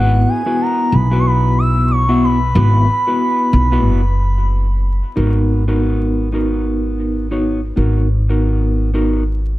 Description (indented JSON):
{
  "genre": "trip hop",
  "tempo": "92 BPM",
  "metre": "4/4",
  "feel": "swing 60% on 16ths",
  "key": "G# minor",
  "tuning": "A4 = 440 Hz",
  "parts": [
    { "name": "pure breathy sine lead", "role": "melody", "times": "0.0-4.5 s", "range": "F#5 to E6", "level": "-19 LUFS", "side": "equal", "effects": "chorus, tape echo" },
    { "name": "mellow electric guitar", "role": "accompaniment", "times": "0.0-9.2 s", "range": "B3 to E5", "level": "-19 LUFS", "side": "equal", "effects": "harmonic tremolo, vintage 12-bit sampler grit, tape echo" },
    { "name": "upright bass", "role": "bass", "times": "0.0-9.6 s", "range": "F#1 to B1", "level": "-15 LUFS", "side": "equal", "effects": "none" }
  ],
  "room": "small room reverb",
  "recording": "vinyl crackle",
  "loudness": "-13 LUFS",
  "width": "side -17 dB against mid",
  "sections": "0.0-5.2 A section; 5.2-9.6 B section",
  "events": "none",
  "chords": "0.0 Esus2/G#; 5.2 G#m7"
}